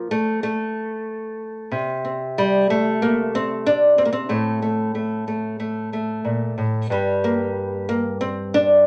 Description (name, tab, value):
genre	folk, solo fingerstyle acoustic guitar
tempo	92 BPM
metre	4/4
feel	straight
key	unclear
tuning	A4 = 440 Hz
part	nylon-string guitar	solo	0.0-8.9 s	G2 to D4	-22 LUFS	equal	none
room	moderate studio ambience, RT60 0.5 s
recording	none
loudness	-22 LUFS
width	mono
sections	0.0-8.9 A section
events	none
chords	0.0 N.C.; 4.3 Am; 6.9 N.C.